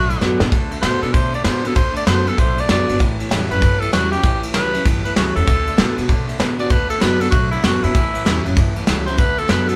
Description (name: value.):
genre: rockabilly.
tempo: 194 BPM.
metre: 4/4.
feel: swing 63% on 8ths.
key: D major.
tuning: A4 = 440 Hz.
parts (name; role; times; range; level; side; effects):
raspy tenor saxophone; melody; 0.0-9.8 s; E4 to D5; -24 LUFS; equal; none.
picked steel-string acoustic guitar; accompaniment; 0.0-9.8 s; E2 to F#4; -27 LUFS; equal; none.
electric guitar through a small old amp; riff; 0.0-9.8 s; A2 to B3; -27 LUFS; equal; none.
upright bass; bass; 0.0-9.7 s; G1 to B2; -25 LUFS; equal; none.
soft brush drum kit; drums; 0.1-9.7 s; kick drum, ride cymbal, snare drum; -21 LUFS; equal; none.
room: light reverb.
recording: band playing live in one room.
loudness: -17 LUFS.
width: mono.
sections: 0.5-9.8 A section.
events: tenor saxophone solo 0.0-9.8; drum fill 0.2-0.5.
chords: 0.0 D; 3.0 A7; 5.5 D; 7.9 A7; 9.2 D.